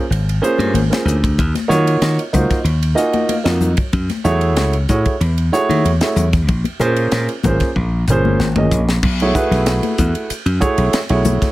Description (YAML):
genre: electric jazz fusion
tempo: 94 BPM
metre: 4/4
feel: straight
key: unclear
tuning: A4 = 439 Hz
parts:
  - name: dark baby grand piano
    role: accompaniment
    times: 0.0-11.5 s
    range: A3 to Ab5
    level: -18 LUFS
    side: right 2 dB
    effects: none
  - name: slap bass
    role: bass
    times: 0.1-11.4 s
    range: G1 to Eb3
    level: -17 LUFS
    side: equal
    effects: none
  - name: tight funk drum kit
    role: drums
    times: 0.1-11.5 s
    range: crash cymbal, hi-hat, kick drum, ride cymbal, snare drum, toms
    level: -21 LUFS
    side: equal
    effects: none
  - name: congas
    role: percussion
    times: 0.6-11.4 s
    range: none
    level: -23 LUFS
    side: left 5 dB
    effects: none
room: light reverb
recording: none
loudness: -14 LUFS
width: side -17 dB against mid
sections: 0.0-9.0 A section; 9.0-11.5 B section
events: grand piano fill 2.7-3.9; drum fill 7.8-9.0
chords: 0.0 Bbm9; 1.4 Ebm9; 3.9 Gbm9; 6.5 Bbm9; 9.0 B13sus4